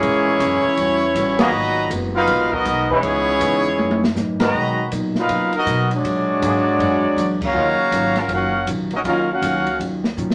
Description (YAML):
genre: jazz, big band swing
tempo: 160 BPM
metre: 4/4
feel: swing 63% on 8ths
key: Eb phrygian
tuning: A4 = 441 Hz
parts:
  - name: warm trumpet section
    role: melody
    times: 0.0-9.8 s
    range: Ab3 to Bb5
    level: -21 LUFS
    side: equal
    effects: none
  - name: clear trombone section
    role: second line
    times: 0.0-9.8 s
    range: Bb2 to A#4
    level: -26 LUFS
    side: equal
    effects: none
  - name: hollow-body jazz guitar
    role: accompaniment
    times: 0.0-10.3 s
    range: Gb2 to Bb4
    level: -30 LUFS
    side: equal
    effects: none
  - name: upright bass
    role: bass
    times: 0.0-10.3 s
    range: Gb1 to Db3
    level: -31 LUFS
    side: equal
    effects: none
  - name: open jazz drum kit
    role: drums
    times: 0.0-10.3 s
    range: crash cymbal, hi-hat, kick drum, ride cymbal, snare drum, toms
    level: -29 LUFS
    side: equal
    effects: none
  - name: warm trombone section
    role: sustained chords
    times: 1.4-9.2 s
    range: Eb3 to Cb5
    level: -24 LUFS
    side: equal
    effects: none
room: wet studio reverb, RT60 0.7 s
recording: none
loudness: -19 LUFS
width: mono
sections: 0.0-10.3 A section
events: band accent 1.3, 4.3, 7.4; drum fill 3.8-4.2, 10.2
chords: 0.0 Bbm7b5; 0.8 A13; 1.5 Abm9; 3.0 Dbm9; 3.8 Gb13; 4.5 Bmaj7; 6.0 Bb7alt; 7.5 Ebm9